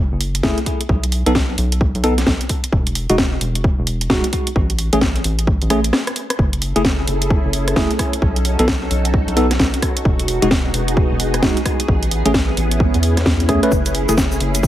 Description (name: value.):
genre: UK garage, two-step garage.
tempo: 131 BPM.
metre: 4/4.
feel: swing 62% on 16ths.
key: F# dorian.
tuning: A4 = 440 Hz.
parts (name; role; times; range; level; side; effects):
rubbery square bass; bass; 0.0-14.7 s; E1 to E2; -20 LUFS; equal; sidechain pumping.
house drum kit; drums; 0.2-14.7 s; cabasa, hi-hat, rim click, snare drum; -20 LUFS; equal; overdrive.
bell-like tine electric piano; stabs; 0.4-14.1 s; G#3 to B4; -20 LUFS; equal; wide subtle chorus, low-pass filter, tape echo.
electronic kick drum; drums; 0.4-14.7 s; none; -19 LUFS; equal; overdrive.
soft string machine; sustained chords; 6.7-14.7 s; A3 to A4; -24 LUFS; equal; phaser, ensemble chorus, sidechain pumping.
room: light reverb, digital ambience.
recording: heavily compressed radio sound.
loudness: -15 LUFS.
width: side -13 dB against mid.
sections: 0.0-14.7 A section.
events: drum fill 5.7-6.4; break 5.9-6.4.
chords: 0.0 F#m9; 0.7 N.C.; 6.4 F#m9; 8.0 B7; 10.1 Emaj9; 11.9 Amaj7; 13.7 F#m9.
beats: 0.43 | 0.89 1.35 1.81 2.27 | 2.73 3.18 3.64 4.10 | 4.56 5.01 5.47 5.93 | 6.39 6.85 7.31 7.76 | 8.22 8.68 9.14 9.60 | 10.05 10.51 10.97 11.43 | 11.89 12.34 12.80 13.26 | 13.72 14.18 14.63.